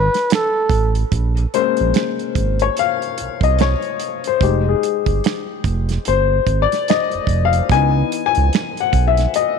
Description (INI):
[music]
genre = R&B, neo-soul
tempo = 73 BPM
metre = 4/4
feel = swing 59% on 16ths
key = Bb minor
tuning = A4 = 437 Hz
[part]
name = mellow flugelhorn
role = melody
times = 0.0-0.9 s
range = A4 to Cb5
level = -19 LUFS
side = right 1 dB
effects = tape echo
[part]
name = warm upright piano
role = accompaniment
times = 0.0-9.6 s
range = Fb3 to Ab5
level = -18 LUFS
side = left 12 dB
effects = none
[part]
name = smooth gliding synth bass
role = bass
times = 0.0-9.3 s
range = F1 to Db2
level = -17 LUFS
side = right 2 dB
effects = transformer saturation
[part]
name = damped 70s drum kit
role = drums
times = 0.1-9.6 s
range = finger snaps, hi-hat, kick drum, snare drum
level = -21 LUFS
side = right 7 dB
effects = none
[sound]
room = light reverb, small room reverb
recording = 1960s-style stereo with parts hard left and right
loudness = -15 LUFS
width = side -6 dB against mid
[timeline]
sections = 0.0-1.1 A section; 1.1-9.6 B section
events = upright piano solo 1.1-9.6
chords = 0.0 Gbm9; 1.1 Bbm9; 4.4 Fm9; 7.7 Dbm9